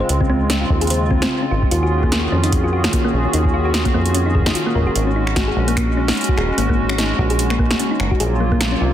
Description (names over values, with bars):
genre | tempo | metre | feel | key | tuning
IDM | 148 BPM | 4/4 | swing 56% on 16ths | unclear | A4 = 440 Hz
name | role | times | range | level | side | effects
hollow soft pad | sustained chords | 0.0-8.9 s | Db3 to Ab4 | -21 LUFS | right 1 dB | chorus, vintage 12-bit sampler grit
thumb-piano-like synth pluck | arpeggios | 0.0-8.9 s | Bb3 to C5 | -23 LUFS | left 2 dB | chorus, vintage 12-bit sampler grit, digital delay
deep acid bass | bass | 0.0-8.9 s | Eb1 to F2 | -20 LUFS | equal | tube saturation
electro analog drum machine | drums | 0.1-8.7 s | finger snaps, hi-hat, snare drum | -22 LUFS | right 1 dB | overdrive, digital delay
electronic kick drum | drums | 0.2-8.6 s | none | -21 LUFS | equal | overdrive
room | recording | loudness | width
light reverb, digital ambience | dense, heavily limited modern master | -15 LUFS | side -11 dB against mid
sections
0.0-8.9 A section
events
none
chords
0.0 Dbmaj7; 1.7 Ebm11; 5.0 Ab9sus4; 8.2 Gbmaj9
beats
| 0.09 0.50 0.90 1.31 | 1.71 2.12 2.52 2.93 | 3.34 3.74 4.15 4.55 | 4.96 5.36 5.77 6.17 | 6.58 6.99 7.39 7.80 | 8.20 8.61